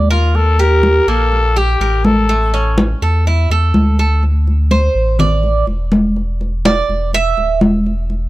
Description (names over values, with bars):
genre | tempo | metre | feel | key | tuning
latin, Cuban son and guajira | 124 BPM | 4/4 | straight | unclear | A4 = 440 Hz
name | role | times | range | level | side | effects
Cuban tres | arpeggios | 0.0-7.6 s | A3 to E5 | -18 LUFS | right 4 dB | none
sub bass with octave | bass | 0.0-8.3 s | D1 to E2 | -15 LUFS | equal | none
growling trumpet | melody | 0.1-2.8 s | F4 to Bb4 | -17 LUFS | left 4 dB | none
congas | percussion | 0.1-8.3 s | none | -16 LUFS | left 1 dB | none
room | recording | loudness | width
little or no reverb | close, detailed microphones | -12 LUFS | side -17 dB against mid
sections
0.0-4.2 A section; 4.2-8.3 B section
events
Cuban tres solo 4.2-8.3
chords
0.3 Eb; 2.3 A; 4.2 Dsus2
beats
| 0.34 0.83 1.31 1.80 | 2.29 2.77 3.25 3.74 | 4.23 4.71 5.20 5.68 | 6.17 6.65 7.13 7.62 | 8.10